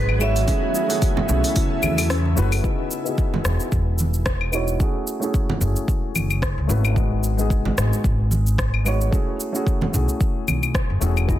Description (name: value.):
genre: sunset chillout.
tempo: 111 BPM.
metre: 4/4.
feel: swing 56% on 16ths.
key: E major.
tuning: A4 = 443 Hz.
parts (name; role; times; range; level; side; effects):
vibraphone with medium hard mallets; melody; 0.0-2.1 s; E5; -27 LUFS; right 5 dB; ping-pong delay.
dark baby grand piano; accompaniment; 0.0-11.4 s; E3 to C#5; -27 LUFS; moving between left 7 dB and right 3 dB; auto-pan, low-pass filter, ping-pong delay.
shimmering ambient pad; sustained chords; 0.0-2.6 s; C#3 to G#4; -30 LUFS; equal; chorus, built-in reverb.
kalimba; arpeggios; 0.0-2.5, 11.3-11.4 s; C#4 to G#4; -32 LUFS; left 3 dB; ping-pong delay.
upright bass; bass; 0.0-11.4 s; E1 to E2; -21 LUFS; equal; none.
deep house drum kit; drums; 0.1-11.4 s; claves, hi-hat, rim click, shaker; -27 LUFS; left 2 dB; none.
bongos and congas; percussion; 0.2-10.6 s; none; -27 LUFS; right 2 dB; none.
electronic kick drum; drums; 0.5-11.4 s; none; -22 LUFS; equal; none.
room: studio reverb.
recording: dense, heavily limited modern master.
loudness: -19 LUFS.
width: side -13 dB against mid.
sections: 0.0-2.6 A section; 2.6-11.4 B section.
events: kick drops out 2.1-2.6; filter sweep on grand piano 2.6-11.4.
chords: 0.5 B13sus4; 2.6 Emaj9; 4.8 F#m7; 7.0 G#m7; 9.1 B13sus4.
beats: | 0.48 1.02 1.56 2.10 | 2.64 3.18 3.72 4.26 | 4.80 5.34 5.88 6.43 | 6.97 7.51 8.05 8.59 | 9.13 9.67 10.21 10.75 | 11.29.